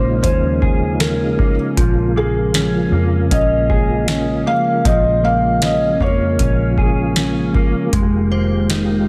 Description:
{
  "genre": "dream pop",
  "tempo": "78 BPM",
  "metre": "4/4",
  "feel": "straight",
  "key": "Bb minor",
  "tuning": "A4 = 440 Hz",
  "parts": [
    { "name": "felt-muted upright piano", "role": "melody", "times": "0.0-7.5 s", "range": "Ab4 to F5", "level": "-22 LUFS", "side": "equal", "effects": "none" },
    { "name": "mellow tonewheel organ", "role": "sustained chords", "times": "0.0-9.1 s", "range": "Db3 to G4", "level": "-24 LUFS", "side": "equal", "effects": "chorus vibrato, fast rotary speaker" },
    { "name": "mellow electric guitar", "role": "arpeggios", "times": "0.0-9.1 s", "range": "F3 to Ab4", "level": "-23 LUFS", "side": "equal", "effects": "analog chorus, digital delay" },
    { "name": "vintage muted picked electric bass", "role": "bass", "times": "0.0-9.0 s", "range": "F1 to F2", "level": "-23 LUFS", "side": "equal", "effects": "none" },
    { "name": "booming analog drum machine", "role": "drums", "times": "0.2-8.9 s", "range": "hi-hat, kick drum, snare drum", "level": "-20 LUFS", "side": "equal", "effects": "none" },
    { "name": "glassy synth bell", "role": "texture", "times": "8.3-9.1 s", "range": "C5", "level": "-32 LUFS", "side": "equal", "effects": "chorus, phaser, digital delay" }
  ],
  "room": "moderate concert hall reverb, RT60 2.1 s",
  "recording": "dense, heavily limited modern master",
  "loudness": "-16 LUFS",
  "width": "mono",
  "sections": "0.0-9.1 A section",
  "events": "none",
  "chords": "0.0 Eb9sus4; 1.8 Bbm7; 7.9 Fm11"
}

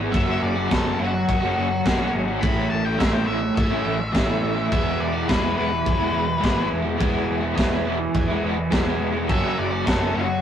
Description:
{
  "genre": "garage rock duo or trio",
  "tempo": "105 BPM",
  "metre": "4/4",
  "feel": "straight",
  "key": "E major",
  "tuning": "A4 = 441 Hz",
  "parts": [
    { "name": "crunchy overdriven guitar", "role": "riff", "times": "0.0-10.4 s", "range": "A2 to G#4", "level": "-23 LUFS", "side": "equal", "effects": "tremolo" },
    { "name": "growling picked electric bass", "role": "bass", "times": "0.0-10.4 s", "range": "E1 to A2", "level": "-30 LUFS", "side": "equal", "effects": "overdrive, tube saturation" },
    { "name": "octave-fuzz lead guitar", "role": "melody", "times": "0.1-10.4 s", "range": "F#4 to B5", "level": "-27 LUFS", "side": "left 2 dB", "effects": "distortion" },
    { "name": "combo organ", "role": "sustained chords", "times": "0.1-10.2 s", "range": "E4 to G#5", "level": "-34 LUFS", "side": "right 2 dB", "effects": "none" },
    { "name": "crunchy breakbeat drum kit", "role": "drums", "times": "0.1-10.0 s", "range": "crash cymbal, kick drum, snare drum", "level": "-24 LUFS", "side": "equal", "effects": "none" }
  ],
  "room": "light reverb",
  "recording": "rough rehearsal-room recording, warm saturation",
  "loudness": "-20 LUFS",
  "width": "side -9 dB against mid",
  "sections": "0.0-10.4 A section",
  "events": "transistor combo organ fill 8.4-9.3",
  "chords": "0.1 F#; 2.4 A; 4.7 E; 9.3 F#"
}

